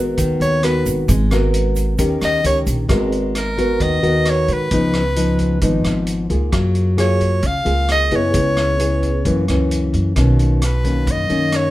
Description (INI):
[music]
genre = bossa nova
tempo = 132 BPM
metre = 4/4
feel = straight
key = G# minor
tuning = A4 = 439 Hz
[part]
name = nylon-string guitar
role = accompaniment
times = 0.0-11.7 s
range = F#2 to A#4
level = -19 LUFS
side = left 1 dB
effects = none
[part]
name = upright bass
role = bass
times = 0.0-11.7 s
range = G#1 to G#2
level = -19 LUFS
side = equal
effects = none
[part]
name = vintage drum kit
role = drums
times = 0.2-11.6 s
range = hi-hat, kick drum, rim click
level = -25 LUFS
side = equal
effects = none
[part]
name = tube shaker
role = percussion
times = 0.2-2.9 s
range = none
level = -32 LUFS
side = right 5 dB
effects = none
[part]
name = bright soprano saxophone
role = melody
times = 0.4-11.7 s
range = A#4 to E#5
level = -20 LUFS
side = equal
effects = none
[sound]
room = moderate studio reverb, RT60 0.9 s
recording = minimal, uncompressed stereo recording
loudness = -15 LUFS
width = side -16 dB against mid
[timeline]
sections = 0.0-2.9 A section; 2.9-11.7 B section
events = soprano saxophone solo 0.0-2.9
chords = 0.0 G#m9; 2.0 D#7; 2.9 G#m9; 4.7 C#9; 6.5 F#maj9; 8.3 C#m7; 9.3 F#7; 10.2 Bmaj9